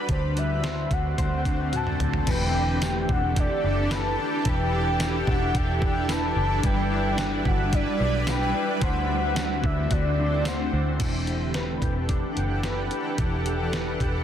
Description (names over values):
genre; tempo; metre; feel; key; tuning
dream pop; 110 BPM; 4/4; straight; unclear; A4 = 440 Hz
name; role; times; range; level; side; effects
shimmering ambient pad; sustained chords; 0.0-14.2 s; D3 to F#5; -29 LUFS; right 1 dB; chorus, built-in reverb
mellow electric guitar; arpeggios; 0.0-14.2 s; D3 to C5; -30 LUFS; left 2 dB; ensemble chorus, tape echo
soft octave-layered synth lead; melody; 0.1-10.9 s; C5 to A5; -30 LUFS; equal; chorus, phaser, tape echo
vintage muted fingered electric bass; bass; 0.1-14.2 s; E1 to D2; -28 LUFS; equal; none
detuned 8-bit digital drum machine; drums; 0.1-14.1 s; crash cymbal, hi-hat, kick drum, snare drum, tambourine, toms; -28 LUFS; equal; overdrive
room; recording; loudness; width
light reverb, digital ambience; dense, heavily limited modern master; -22 LUFS; side -9 dB against mid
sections
0.0-2.3 A section; 2.3-11.0 B section; 11.0-14.2 C section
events
drum fill 1.7-2.3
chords
0.1 D7; 2.3 Em11; 6.6 Gmaj7; 8.8 D7; 11.0 Em11